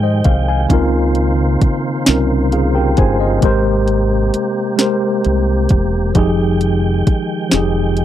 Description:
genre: slow six-eight R&B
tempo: 44 BPM (dotted quarters)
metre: 6/8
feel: straight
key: F minor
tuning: A4 = 440 Hz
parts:
  - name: mellow tine electric piano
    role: accompaniment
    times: 0.0-8.0 s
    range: Db3 to Ab5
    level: -16 LUFS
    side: equal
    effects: medium stereo tremolo
  - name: tonewheel organ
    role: sustained chords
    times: 0.0-8.0 s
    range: C3 to G5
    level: -24 LUFS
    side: right 2 dB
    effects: chorus vibrato, stopped rotary speaker
  - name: deep dub fingered electric bass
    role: bass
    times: 0.0-8.0 s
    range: E1 to Ab2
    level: -16 LUFS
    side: equal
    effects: none
  - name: smooth R&B drum kit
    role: drums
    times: 0.2-8.0 s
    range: hi-hat, kick drum, snare drum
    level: -14 LUFS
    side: equal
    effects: none
room: little or no reverb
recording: dry, close 1970s-style studio recording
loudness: -13 LUFS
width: side -12 dB against mid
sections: 0.0-8.0 A section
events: tine electric piano fill 2.1-3.4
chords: 0.0 Fm9; 0.7 Dbmaj13; 3.4 Abmaj9; 6.2 Fm9

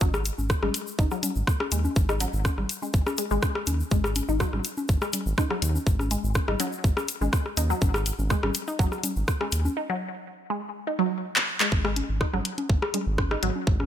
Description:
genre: minimal techno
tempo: 123 BPM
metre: 4/4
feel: straight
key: unclear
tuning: A4 = 440 Hz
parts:
  - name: resonant blip pluck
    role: riff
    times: 0.0-13.5 s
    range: F#3 to D#4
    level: -31 LUFS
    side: equal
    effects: phaser, sidechain pumping, ping-pong delay
  - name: round analog bass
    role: bass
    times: 0.0-13.9 s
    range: G#1 to D#2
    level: -28 LUFS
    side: equal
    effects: sidechain pumping
  - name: electronic kick drum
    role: drums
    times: 0.0-13.8 s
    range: none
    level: -24 LUFS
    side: equal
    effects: studio ambience
  - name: egg shaker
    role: percussion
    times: 0.0-9.7 s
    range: none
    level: -37 LUFS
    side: left 4 dB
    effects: none
  - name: electronic congas and rim click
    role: percussion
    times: 0.0-13.9 s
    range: none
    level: -31 LUFS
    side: left 2 dB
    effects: studio ambience, ping-pong delay
  - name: garage drum kit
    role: drums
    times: 0.3-13.5 s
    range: handclaps, hi-hat, rim click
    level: -28 LUFS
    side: equal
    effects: studio ambience
room: light reverb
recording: none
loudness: -24 LUFS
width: side -10 dB against mid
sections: 0.0-11.7 A section; 11.7-13.9 B section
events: drum fill 11.4-11.7; drop 11.7-13.9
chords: 0.0 G#5

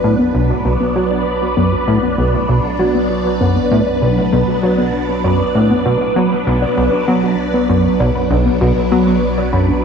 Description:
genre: ambient, sequencer-driven space music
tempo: 98 BPM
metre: 4/4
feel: straight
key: B minor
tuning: A4 = 439 Hz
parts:
  - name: phased string machine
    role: sustained chords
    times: 0.0-9.8 s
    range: F#3 to D5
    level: -17 LUFS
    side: equal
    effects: ensemble chorus, phaser
  - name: soft round pluck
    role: arpeggios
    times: 0.0-9.8 s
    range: B3 to B5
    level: -20 LUFS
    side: left 4 dB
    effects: chorus, auto-pan, analog delay
  - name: plucky analog bass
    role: riff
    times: 0.0-9.7 s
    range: B1 to F#3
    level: -16 LUFS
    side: right 1 dB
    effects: lush chorus, cassette tape, analog delay
  - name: warm sub bass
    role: bass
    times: 0.0-9.8 s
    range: B1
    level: -27 LUFS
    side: equal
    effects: none
room: wet lush hall reverb, RT60 3.0 s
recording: dark, warm production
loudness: -12 LUFS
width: side -6 dB against mid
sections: 0.0-9.8 A section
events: fade-in on sub bass 0.0-9.8; filter sweep on synth arpeggio sound 0.0-9.8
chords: 0.0 Bm

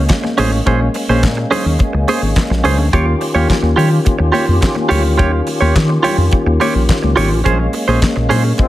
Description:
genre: disco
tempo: 106 BPM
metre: 4/4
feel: straight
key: Bb dorian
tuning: A4 = 440 Hz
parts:
  - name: direct-recorded clean electric guitar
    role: accompaniment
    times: 0.0-8.6 s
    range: Db4 to Db5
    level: -18 LUFS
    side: right 4 dB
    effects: none
  - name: percussive tonewheel organ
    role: sustained chords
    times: 0.0-8.7 s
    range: Eb3 to G4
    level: -19 LUFS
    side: left 1 dB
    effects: chorus vibrato, slow rotary speaker
  - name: fingered electric bass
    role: bass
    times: 0.0-8.5 s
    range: Ab1 to Eb3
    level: -15 LUFS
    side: equal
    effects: none
  - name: damped 70s drum kit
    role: drums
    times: 0.1-8.7 s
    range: handclaps, hi-hat, kick drum, snare drum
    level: -18 LUFS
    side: equal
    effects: none
  - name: congas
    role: percussion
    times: 0.2-8.7 s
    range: none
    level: -25 LUFS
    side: left 6 dB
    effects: none
  - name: clear horn section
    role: stabs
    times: 8.6-8.7 s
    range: Ab3 to C5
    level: -19 LUFS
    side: left 5 dB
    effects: none
room: light reverb, small room ambience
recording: none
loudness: -12 LUFS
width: side -15 dB against mid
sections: 0.0-8.7 A section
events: none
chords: 0.0 Bbm9; 2.9 Eb9; 7.5 Bbm9

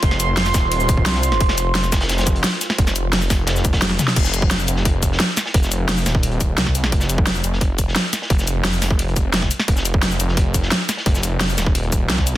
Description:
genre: dark technical drum and bass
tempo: 174 BPM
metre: 4/4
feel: straight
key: unclear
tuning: A4 = 442 Hz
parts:
  - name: dark analog pad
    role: sustained chords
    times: 0.0-4.1 s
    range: F4 to C6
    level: -25 LUFS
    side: right 3 dB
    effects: chorus, phaser, sidechain pumping
  - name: snarling distorted saw bass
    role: bass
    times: 0.0-12.4 s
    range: Eb1 to C2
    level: -21 LUFS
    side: equal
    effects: distortion, overdrive
  - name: crunchy breakbeat drum kit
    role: drums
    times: 0.0-12.3 s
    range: hi-hat, snare drum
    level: -28 LUFS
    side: equal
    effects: high-pass filter on hats, high-pass filter on snare, high-pass filter on room
  - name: dubstep drum kit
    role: drums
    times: 0.0-12.3 s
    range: crash cymbal, hi-hat, shaker, snare drum, toms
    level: -21 LUFS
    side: left 1 dB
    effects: none
  - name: electronic kick drum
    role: drums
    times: 0.0-12.3 s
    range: none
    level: -18 LUFS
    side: equal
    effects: overdrive
room: little or no reverb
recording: dense, heavily limited modern master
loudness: -16 LUFS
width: side -14 dB against mid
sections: 0.0-4.2 A section; 4.2-12.4 A section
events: drop 0.0-4.2, 4.2-12.4; drum fill 3.9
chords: 0.0 F5; 4.2 N.C.

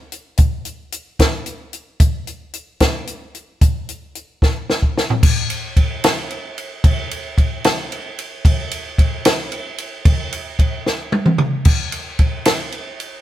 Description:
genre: rock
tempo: 75 BPM (dotted quarters)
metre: 6/8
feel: straight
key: none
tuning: none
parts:
  - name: compact cocktail drum kit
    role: drums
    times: 0.1-13.1 s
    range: crash cymbal, hi-hat, kick drum, ride cymbal, snare drum, toms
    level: -16 LUFS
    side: equal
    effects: none
room: light reverb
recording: band playing live in one room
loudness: -16 LUFS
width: side -13 dB against mid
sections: 0.0-5.2 A section; 5.2-13.2 B section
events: drum fill 4.4-5.2, 10.8-11.7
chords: none

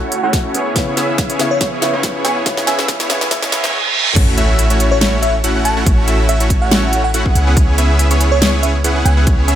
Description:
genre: future bass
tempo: 141 BPM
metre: 4/4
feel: swing 54% on 16ths, half-time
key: A major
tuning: A4 = 442 Hz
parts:
  - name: bell-like FM electric piano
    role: melody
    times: 0.0-9.6 s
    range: C#5 to A5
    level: -22 LUFS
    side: right 1 dB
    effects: chorus, sidechain pumping, low-pass filter, tape echo
  - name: felt-muted upright piano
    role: accompaniment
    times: 0.0-4.2 s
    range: C#3 to E5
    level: -24 LUFS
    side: left 3 dB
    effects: vintage 12-bit sampler grit, sidechain pumping, tape echo
  - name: supersaw chords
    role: riff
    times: 0.0-9.6 s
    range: A3 to F#5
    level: -18 LUFS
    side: equal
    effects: cassette tape, sidechain pumping, low-pass filter
  - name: riser, reverse cymbal and sub drop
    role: sound effects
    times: 2.2-5.9 s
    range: none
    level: -22 LUFS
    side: right 3 dB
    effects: none
  - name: pop drum kit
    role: drums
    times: 0.1-9.6 s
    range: crash cymbal, hi-hat, snare drum, toms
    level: -19 LUFS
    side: equal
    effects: high-pass filter on snare, high-pass filter on hats, high-pass filter on toms, high-pass filter on cymbals
  - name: electronic kick drum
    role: drums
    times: 0.3-9.4 s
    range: none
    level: -16 LUFS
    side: equal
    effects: none
  - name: warm 808-style bass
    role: bass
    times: 4.2-9.6 s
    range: A1 to C#2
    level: -15 LUFS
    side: equal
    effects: tube saturation, sidechain pumping
room: light reverb, digital ambience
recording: high-pass filter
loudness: -12 LUFS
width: side -11 dB against mid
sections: 0.0-4.2 A section; 4.2-9.6 B section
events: build-up 0.0-4.2; drum fill 0.0-3.7, 3.7-4.2; filter sweep on supersaw synth 0.0-4.2; filter sweep on FM electric piano 0.0-4.2; filter sweep 0.0-4.2; riser 2.2-4.2; reverse cymbal 3.3-4.2; drop 4.2-9.6; impact 4.2-5.9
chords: 0.0 A6; 0.5 C#m7; 4.2 A6; 7.4 C#m7

